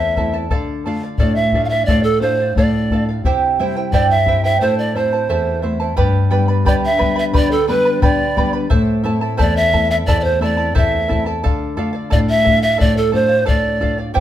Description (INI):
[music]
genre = andean folk, Andean ensemble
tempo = 88 BPM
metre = 2/4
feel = straight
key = unclear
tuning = A4 = 440 Hz
[part]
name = polished pan flute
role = melody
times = 0.0-14.0 s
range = A4 to F5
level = -17 LUFS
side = right 2 dB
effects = none
[part]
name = charango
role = accompaniment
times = 0.0-14.2 s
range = E4 to B5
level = -22 LUFS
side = right 4 dB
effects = none
[part]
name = nylon-string guitar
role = accompaniment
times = 0.0-14.2 s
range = E2 to F4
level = -19 LUFS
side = left 1 dB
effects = none
[part]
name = bombo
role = percussion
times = 0.2-14.2 s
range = none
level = -19 LUFS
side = left 2 dB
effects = none
[sound]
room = moderate studio reverb, RT60 0.9 s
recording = band playing live in one room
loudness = -14 LUFS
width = side -11 dB against mid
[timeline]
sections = 0.0-6.0 A section; 6.0-14.2 A section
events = break 4.6-6.0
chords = 0.0 Am; 0.5 Dm; 3.3 C; 4.6 Am; 6.0 G; 8.7 Am; 11.4 Dm